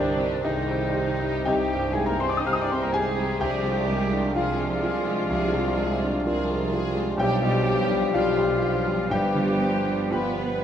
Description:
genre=classical, romantic movement for piano and orchestra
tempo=56-64 BPM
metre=4/4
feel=rubato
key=C minor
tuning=A4 = 441 Hz
part: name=rich studio violin section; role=melody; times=0.0-10.6 s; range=Eb4 to Ab4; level=-38 LUFS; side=left 4 dB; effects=none
part: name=warm concert grand piano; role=melody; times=0.0-10.6 s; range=B1 to F6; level=-26 LUFS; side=left 1 dB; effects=none
part: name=concert flute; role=second line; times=0.0-10.6 s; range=D5 to F6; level=-36 LUFS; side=left 2 dB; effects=none
part: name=rich studio violin section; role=second line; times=0.0-10.6 s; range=G3 to Eb4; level=-38 LUFS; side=left 2 dB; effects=none
part: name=warm clarinet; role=second line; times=0.0-10.6 s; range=B4 to D5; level=-37 LUFS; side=left 1 dB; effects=none
part: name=warm oboe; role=second line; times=0.0-10.6 s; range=D4 to F5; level=-35 LUFS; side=right 1 dB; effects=none
part: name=clear studio viola section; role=accompaniment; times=0.0-10.6 s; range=D4 to F5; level=-34 LUFS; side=equal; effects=none
part: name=mellow bassoon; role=accompaniment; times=0.0-10.6 s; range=F3 to C4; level=-35 LUFS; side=right 2 dB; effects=none
part: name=warm French horn section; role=sustained chords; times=0.0-10.6 s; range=Eb4 to C5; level=-31 LUFS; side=left 7 dB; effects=none
part: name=warm trombone section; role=sustained chords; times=0.0-10.6 s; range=C3 to D4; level=-34 LUFS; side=right 3 dB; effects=none
part: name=rich studio cello section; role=bass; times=0.0-10.6 s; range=D3 to F4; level=-33 LUFS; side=right 4 dB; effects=none
part: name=rich studio double bass section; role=bass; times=0.0-10.6 s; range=G1 to C2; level=-34 LUFS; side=right 4 dB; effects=none
part: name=warm tuba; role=bass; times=0.0-10.6 s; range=G1 to C2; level=-34 LUFS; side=right 5 dB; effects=none
part: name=timpani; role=percussion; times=0.0-0.9 s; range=none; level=barely audible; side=none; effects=none
room=wet recital hall reverb, RT60 1.4 s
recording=none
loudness=-22 LUFS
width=side -9 dB against mid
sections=0.0-10.6 A section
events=none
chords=0.0 Cm; 3.4 Dm7b5/C; 7.2 G7/B; 9.1 G7

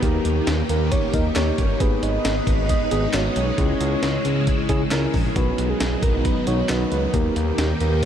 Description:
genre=synth-pop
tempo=135 BPM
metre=4/4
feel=straight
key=unclear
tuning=A4 = 440 Hz
part: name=soft octave-layered synth lead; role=melody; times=0.0-8.1 s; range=G#4 to D#5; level=-27 LUFS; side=right 2 dB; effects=chorus, ping-pong delay
part: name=mellow tine electric piano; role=accompaniment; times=0.0-7.6 s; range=A#3 to A#4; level=-26 LUFS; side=left 1 dB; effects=medium stereo tremolo
part: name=string machine, full ensemble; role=sustained chords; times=0.0-8.1 s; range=C#3 to B4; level=-26 LUFS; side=equal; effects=ensemble chorus
part: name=smooth synth bass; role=bass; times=0.0-8.0 s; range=G1 to D#2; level=-24 LUFS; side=equal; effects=none
part: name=breakbeat sampler-style drum kit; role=drums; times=0.0-8.1 s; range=handclaps, hi-hat, kick drum, snare drum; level=-24 LUFS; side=equal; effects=none
room=moderate huge ambient reverb, RT60 7.9 s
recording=dreamy mix soaked in reverb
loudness=-18 LUFS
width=side -9 dB against mid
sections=0.0-8.1 A section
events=none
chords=0.0 D#; 1.8 G#m; 3.6 C#m; 5.4 B; 7.1 D#

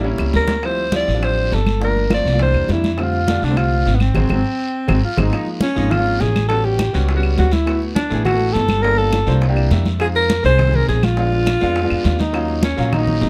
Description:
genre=Afro-Cuban jazz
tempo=205 BPM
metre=4/4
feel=straight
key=unclear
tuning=A4 = 440 Hz
part: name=clear baby grand piano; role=accompaniment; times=0.0-13.3 s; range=D3 to E5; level=-26 LUFS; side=equal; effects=none
part: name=upright bass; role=bass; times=0.0-13.3 s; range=G1 to F2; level=-21 LUFS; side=equal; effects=none
part: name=congas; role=percussion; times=0.0-13.3 s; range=none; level=-25 LUFS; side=equal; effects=none
part: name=guiro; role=percussion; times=0.0-13.3 s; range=none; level=-36 LUFS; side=equal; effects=none
part: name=bongos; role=percussion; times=0.2-13.3 s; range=none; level=-33 LUFS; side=equal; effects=none
part: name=claves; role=percussion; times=0.2-13.1 s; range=none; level=-33 LUFS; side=equal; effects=none
part: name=breathy alto saxophone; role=melody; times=0.4-13.3 s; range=B3 to D5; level=-22 LUFS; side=equal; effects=none
room=light reverb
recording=dark, warm production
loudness=-17 LUFS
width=mono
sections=0.0-5.3 A section; 5.3-13.3 B section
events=drum fill 0.0-0.6, 4.6-5.3; band accent 4.2-5.3; grand piano fill 9.4-10.0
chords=0.0 A7b9; 0.6 Dm11; 1.8 Gm9; 2.4 C9; 3.0 F69; 4.2 Ab7; 5.3 Db69; 6.5 A13; 7.7 D6; 8.8 Gm9; 9.4 C7; 10.0 Fm7; 11.2 Bb7b9; 12.3 Ebm7

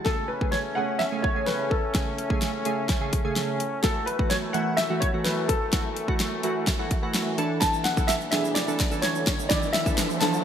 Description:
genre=dance-pop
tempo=127 BPM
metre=4/4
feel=straight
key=A major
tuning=A4 = 440 Hz
part: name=warm baby grand piano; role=melody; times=0.0-10.4 s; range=A4 to A5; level=-28 LUFS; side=left 1 dB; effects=analog chorus
part: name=glassy digital keys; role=accompaniment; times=0.0-10.4 s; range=C#3 to A4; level=-30 LUFS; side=right 2 dB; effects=chorus, sidechain pumping
part: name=mellow brass ensemble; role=sustained chords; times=0.1-10.4 s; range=D2 to C#4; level=-33 LUFS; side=left 1 dB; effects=sidechain pumping
part: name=pop drum kit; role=drums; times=0.1-10.3 s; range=hi-hat, kick drum, snare drum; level=-26 LUFS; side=equal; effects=gated reverb
part: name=tube shaker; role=percussion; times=7.6-10.4 s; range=none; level=-39 LUFS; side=right 8 dB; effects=none
part: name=riser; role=sound effects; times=8.3-10.4 s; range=none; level=-33 LUFS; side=right 2 dB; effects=none
room=moderate plate reverb, RT60 2.6 s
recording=bright 1980s-style digital production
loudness=-23 LUFS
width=side -8 dB against mid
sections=0.1-10.4 A section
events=build-up 0.1-10.4; drum fill 0.1-10.4; riser 8.3-10.4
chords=0.1 Amaj7; 3.8 F#m7; 7.4 Dsus2

